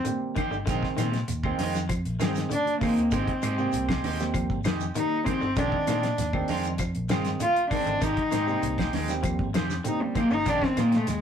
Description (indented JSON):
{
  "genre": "afrobeat",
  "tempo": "98 BPM",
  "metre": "4/4",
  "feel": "straight",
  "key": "Bb mixolydian",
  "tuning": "A4 = 440 Hz",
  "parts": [
    { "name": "electric guitar at the edge of break-up", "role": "arpeggios", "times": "0.0-11.2 s", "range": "C3 to F3", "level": "-35 LUFS", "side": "left 5 dB", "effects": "none" },
    { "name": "damped 70s drum kit", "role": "drums", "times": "0.0-11.2 s", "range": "hi-hat, kick drum, snare drum", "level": "-31 LUFS", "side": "left 1 dB", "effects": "none" },
    { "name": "barky tine electric piano", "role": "accompaniment", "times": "0.1-10.9 s", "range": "Eb3 to Ab4", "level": "-33 LUFS", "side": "right 4 dB", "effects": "overdrive" },
    { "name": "congas", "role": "percussion", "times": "0.1-10.9 s", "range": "none", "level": "-38 LUFS", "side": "right 3 dB", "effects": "none" },
    { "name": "shekere", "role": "percussion", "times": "0.1-11.2 s", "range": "none", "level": "-38 LUFS", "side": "right 3 dB", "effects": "none" },
    { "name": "electric guitar at the edge of break-up", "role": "stabs", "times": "0.4-11.1 s", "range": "Eb3 to G4", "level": "-33 LUFS", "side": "right 3 dB", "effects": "warbly pitch drift, slapback echo" },
    { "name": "claves", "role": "percussion", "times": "0.4-10.9 s", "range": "none", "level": "-40 LUFS", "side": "left 3 dB", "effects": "none" },
    { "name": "fingered electric bass", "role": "bass", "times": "0.5-11.2 s", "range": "G1 to Bb2", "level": "-32 LUFS", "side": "equal", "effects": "none" },
    { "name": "dark cello", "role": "melody", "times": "2.5-11.2 s", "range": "G3 to F4", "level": "-26 LUFS", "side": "left 1 dB", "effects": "none" }
  ],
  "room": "wet small room reverb, RT60 0.5 s",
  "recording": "rough rehearsal-room recording, warm saturation",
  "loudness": "-24 LUFS",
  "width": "side -8 dB against mid",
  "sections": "0.0-11.2 A section",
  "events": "cello solo 0.0-11.2",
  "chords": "0.0 Abmaj7 (rootless); 0.7 Bb9sus4; 3.1 Abmaj7; 5.6 Bb9sus4; 8.0 Abmaj7; 10.5 Bb9sus4"
}